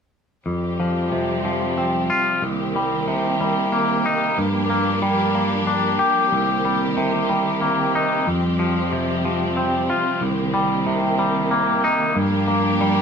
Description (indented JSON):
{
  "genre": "rock",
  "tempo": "62 BPM (dotted quarters)",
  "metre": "6/8",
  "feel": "straight",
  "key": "C minor",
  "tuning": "A4 = 440 Hz",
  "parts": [
    { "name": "clear symphonic string section", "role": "sustained chords", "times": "0.5-13.0 s", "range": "Eb3 to G4", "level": "-24 LUFS", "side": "right 1 dB", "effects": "none" },
    { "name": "twangy electric guitar", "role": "arpeggios", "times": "0.5-13.0 s", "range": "C2 to G4", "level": "-19 LUFS", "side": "left 1 dB", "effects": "none" }
  ],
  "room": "moderate studio reverb, RT60 0.6 s",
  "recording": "band playing live in one room",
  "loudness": "-18 LUFS",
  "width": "side -6 dB against mid",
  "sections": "0.5-13.0 A section",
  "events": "none",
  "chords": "0.5 Fsus2; 2.4 Cm7; 4.4 Gm7; 6.3 Cm7; 8.3 Fsus2; 10.2 Cm7; 12.2 Gm7",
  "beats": "| 0.48 1.45 | 2.43 3.40 | 4.38 5.35 | 6.33 7.30 | 8.28 9.25 | 10.22 11.19 | 12.16"
}